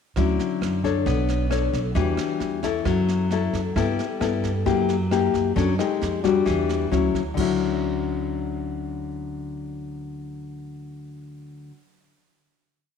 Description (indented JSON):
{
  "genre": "bossa nova",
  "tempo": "133 BPM",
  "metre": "4/4",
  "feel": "straight",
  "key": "D major",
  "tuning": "A4 = 440 Hz",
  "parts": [
    { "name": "nylon-string guitar", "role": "accompaniment", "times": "0.2-11.8 s", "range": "D3 to C#5", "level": "-24 LUFS", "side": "left 8 dB", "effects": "none" },
    { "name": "upright bass", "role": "bass", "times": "0.2-11.7 s", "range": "B1 to G2", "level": "-27 LUFS", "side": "right 2 dB", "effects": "none" },
    { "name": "jazz brush drum kit", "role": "drums", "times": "0.2-7.5 s", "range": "crash cymbal, kick drum, rim click, snare drum", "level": "-32 LUFS", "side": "right 7 dB", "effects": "none" }
  ],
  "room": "moderate echo chamber reverb, RT60 1.9 s, studio reverb",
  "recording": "1960s-style stereo with parts hard left and right",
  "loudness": "-21 LUFS",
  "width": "side -7 dB against mid",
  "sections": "0.2-7.4 A section; 7.4-11.0 final chord",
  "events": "none",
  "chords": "0.2 Dmaj9; 1.1 Bm9; 2.0 Em9; 2.9 F#m7; 3.8 G69; 4.7 F#7b9; 5.6 F#m69; 6.0 Fm9; 6.5 Em9; 6.9 Dmaj9",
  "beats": "| 0.16 0.61 1.06 1.51 | 1.96 2.41 2.86 3.31 | 3.76 4.21 4.66 5.11 | 5.56 6.01 6.46 6.92 | 7.37 7.82 8.28 8.73 | 9.18 9.63 10.09 10.54"
}